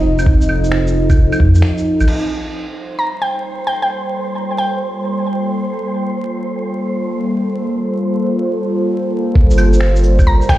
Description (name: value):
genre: future garage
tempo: 132 BPM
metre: 4/4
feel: swing 67% on 16ths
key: G minor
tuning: A4 = 442 Hz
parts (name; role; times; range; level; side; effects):
- warbly tape-like pad; sustained chords; 0.0-10.6 s; F3 to Eb5; -18 LUFS; equal; chorus, built-in reverb, phaser, vintage 12-bit sampler grit, sidechain pumping
- soft dub sub bass; bass; 0.0-2.1, 9.4-10.4 s; F1 to F2; -13 LUFS; equal; sidechain pumping
- lo-fi sampler-style drum kit; drums; 0.2-2.2, 9.5-10.6 s; cabasa, claves, crash cymbal, finger snaps, shaker; -25 LUFS; right 1 dB; studio ambience
- electronic kick drum; drums; 0.3-1.5, 9.4-10.6 s; none; -12 LUFS; equal; studio ambience
- wind-like tuned noise texture; texture; 2.7-8.4 s; C5; -26 LUFS; right 3 dB; built-in reverb
- mallet-like synth pluck; melody; 3.0-5.0, 10.3-10.6 s; G5 to Bb5; -21 LUFS; equal; chorus, cassette tape, analog delay
room: light reverb, digital ambience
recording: played on a big sound system in a bare room, large studio reverb, vinyl crackle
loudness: -14 LUFS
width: side -15 dB against mid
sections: 0.0-2.1 A section; 2.1-9.4 B section; 9.4-10.6 C section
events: break 1.6-2.1; filter sweep on ambient pad 2.1-9.4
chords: 0.0 F7; 2.1 Gm11